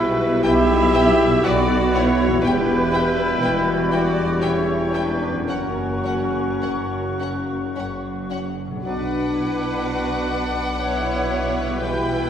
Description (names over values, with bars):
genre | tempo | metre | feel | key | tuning
classical | 52-62 BPM | 3/4 | rubato | B minor | A4 = 445 Hz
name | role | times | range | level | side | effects
clear clarinet | second line | 0.0-12.3 s | C#4 to G4 | -30 LUFS | equal | none
clear oboe | second line | 0.0-12.3 s | E5 to G5 | -32 LUFS | equal | none
hollow flute section | second line | 0.0-12.3 s | B5 to D6 | -30 LUFS | equal | none
rich studio viola section | accompaniment | 0.0-12.3 s | A#4 to E5 | -27 LUFS | right 1 dB | none
bright trombone section | sustained chords | 0.0-12.2 s | B2 to G3 | -29 LUFS | right 2 dB | none
dark French horn section | sustained chords | 0.0-12.2 s | B3 to G4 | -29 LUFS | left 4 dB | none
concert harp | arpeggios | 0.0-12.3 s | E2 to C#5 | -30 LUFS | left 4 dB | none
mellow trumpet section | stabs | 0.0-12.3 s | C#4 to G4 | -26 LUFS | left 1 dB | none
rich studio cello section | bass | 0.0-12.3 s | E2 to B2 | -27 LUFS | right 2 dB | none
warm chamber double bass section | bass | 0.0-12.3 s | E1 to B1 | -26 LUFS | right 1 dB | none
rich chamber violin section | melody | 0.4-12.3 s | F#5 to G5 | -31 LUFS | left 4 dB | none
warm chamber violin section | second line | 0.4-12.3 s | C#4 to E5 | -32 LUFS | left 2 dB | none
room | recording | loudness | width
wet scoring stage reverb, RT60 1.5 s | heard from further back in the room | -18 LUFS | side -9 dB against mid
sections
0.0-12.3 A section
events
none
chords
0.0 Em/B; 1.4 Bm; 2.4 Em; 4.4 C#dim/E; 5.5 F#; 8.8 Bm